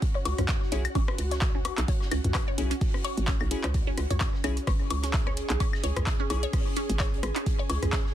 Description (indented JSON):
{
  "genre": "minimal techno",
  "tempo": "129 BPM",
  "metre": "4/4",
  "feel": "swing 56% on 16ths",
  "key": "C# minor",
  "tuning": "A4 = 441 Hz",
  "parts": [
    { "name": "electronic kick drum", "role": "drums", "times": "0.0-8.0 s", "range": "none", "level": "-28 LUFS", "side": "equal", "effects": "none" },
    { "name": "garage drum kit", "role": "drums", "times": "0.0-8.0 s", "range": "handclaps, hi-hat", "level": "-34 LUFS", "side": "equal", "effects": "soft clipping on snare" },
    { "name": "oversized low-tuned drum kit", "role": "drums", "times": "0.0-8.1 s", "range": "hi-hat, snare drum", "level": "-44 LUFS", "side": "left 2 dB", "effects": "sidechain pumping on hats, high-pass filter on hats, high-pass filter on snare, high-pass filter on room" },
    { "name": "ethereal airy pad", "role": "texture", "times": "0.0-8.1 s", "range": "C#4 to G#4", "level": "-36 LUFS", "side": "right 1 dB", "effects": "ensemble chorus, built-in reverb, sidechain pumping" },
    { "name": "resonant blip pluck", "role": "riff", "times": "0.2-8.0 s", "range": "C#4 to C#5", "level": "-36 LUFS", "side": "right 1 dB", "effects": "phaser, sidechain pumping, dub echo" },
    { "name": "hollow knocking FM bass", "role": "bass", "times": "0.3-7.9 s", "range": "G#1 to C#2", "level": "-30 LUFS", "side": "equal", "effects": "sidechain pumping" },
    { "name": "booming analog drum machine", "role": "percussion", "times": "0.3-7.9 s", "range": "rim click, toms, woodblock", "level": "-34 LUFS", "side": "left 4 dB", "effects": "overdrive, soft clipping on snare, ping-pong delay" },
    { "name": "wavetable chord stab", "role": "stabs", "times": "0.7-6.4 s", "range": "C#4 to G#4", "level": "-36 LUFS", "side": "left 4 dB", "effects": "ping-pong delay" }
  ],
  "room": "little or no reverb",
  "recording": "dense, heavily limited modern master",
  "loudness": "-25 LUFS",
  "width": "side -11 dB against mid",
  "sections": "0.0-8.1 A section",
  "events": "none",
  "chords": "0.0 C#5",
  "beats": "| 0.02 0.49 0.95 1.42 | 1.88 2.35 2.81 3.28 | 3.74 4.21 4.67 5.14 | 5.60 6.07 6.53 7.00 | 7.46 7.93"
}